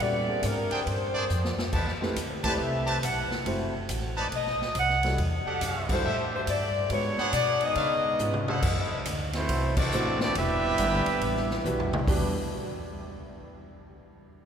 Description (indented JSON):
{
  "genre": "jazz, big band swing",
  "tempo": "139 BPM",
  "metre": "4/4",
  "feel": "swing 65% on 8ths",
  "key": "E minor",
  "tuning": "A4 = 440 Hz",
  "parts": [
    { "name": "warm saxophone section", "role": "melody", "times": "0.0-8.5 s", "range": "A#4 to F#5", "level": "-30 LUFS", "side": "left 2 dB", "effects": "none" },
    { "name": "warm concert grand piano", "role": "accompaniment", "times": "0.0-12.3 s", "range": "G3 to F#5", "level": "-34 LUFS", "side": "right 1 dB", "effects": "none" },
    { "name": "upright bass", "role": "bass", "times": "0.0-12.3 s", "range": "E1 to C#3", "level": "-32 LUFS", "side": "equal", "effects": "none" },
    { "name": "swinging big-band drum kit", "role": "drums", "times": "0.0-12.2 s", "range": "crash cymbal, hi-hat, kick drum, ride cymbal, snare drum, toms", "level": "-33 LUFS", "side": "equal", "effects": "none" },
    { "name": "clear trumpet section", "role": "stabs", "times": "0.7-9.0 s", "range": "D4 to A5", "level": "-34 LUFS", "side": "right 1 dB", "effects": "none" },
    { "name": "mellow trombone section", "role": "second line", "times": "7.6-12.3 s", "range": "E3 to G4", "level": "-36 LUFS", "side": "right 3 dB", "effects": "none" },
    { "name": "clear trumpet section", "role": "melody", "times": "9.4-11.6 s", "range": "A3 to E5", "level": "-30 LUFS", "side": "right 2 dB", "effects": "none" }
  ],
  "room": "wet cathedral reverb, RT60 5.0 s",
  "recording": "recorded in a church or concert hall",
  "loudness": "-25 LUFS",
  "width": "side -7 dB against mid",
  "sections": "0.0-8.6 A section; 8.6-12.1 B section; 12.1-13.8 C section",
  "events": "drum fill 1.3-1.7, 8.2-8.6, 11.6-12.1; band accent 5.8, 9.7",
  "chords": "0.0 A#13; 1.7 Am9; 3.5 F#m7b5; 4.3 B7b9; 5.2 Em11; 6.9 G#m7b5; 7.8 C#7b9; 8.6 F#m7b5; 10.4 Em9"
}